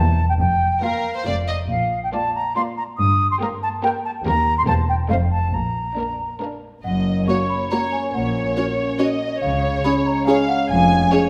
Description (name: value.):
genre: cinematic, playful, whimsical film cue.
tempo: 140 BPM.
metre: 3/4.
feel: straight.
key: Bb major, F# major from 6.8 s.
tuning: A4 = 440 Hz.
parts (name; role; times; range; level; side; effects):
warm studio violin section; melody; 0.0-11.2 s; Bb4 to Eb5; -33 LUFS; equal; none.
dark studio violin section; second line; 0.0-11.3 s; D4 to G#5; -28 LUFS; equal; none.
silver concert flute; second line; 0.0-6.4 s; F5 to Eb6; -24 LUFS; equal; none.
dark studio viola section; accompaniment; 0.0-11.2 s; A3 to G#4; -28 LUFS; equal; none.
dark studio cello section; bass; 0.0-11.1 s; Eb2 to C#3; -26 LUFS; equal; none.
rich studio double bass section; bass; 0.0-11.1 s; E1 to Eb2; -27 LUFS; equal; none.
large celesta; melody; 6.8-11.3 s; E#5 to C#6; -28 LUFS; equal; none.
dark French horn section; sustained chords; 6.8-11.3 s; G#3 to C#4; -28 LUFS; equal; none.
room: wet scoring stage reverb, RT60 1.8 s.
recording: none.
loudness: -20 LUFS.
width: mono.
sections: 0.0-6.8 A section; 6.8-11.3 B section.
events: none.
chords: 0.4 Fsus4; 1.3 F; 1.7 Bb; 3.0 Gm; 4.3 Eb; 4.7 C7/E; 5.1 F7; 5.5 Bb; 6.8 F#; 8.1 F#/A#; 9.4 C#; 10.7 C#/E#.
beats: | 0.39 0.83 1.27 | 1.70 2.13 2.56 | 2.99 3.41 3.84 | 4.25 4.67 5.10 | 5.53 5.97 6.41 | 6.85 7.28 7.71 | 8.14 8.56 8.99 | 9.42 9.85 10.27 | 10.70 11.12.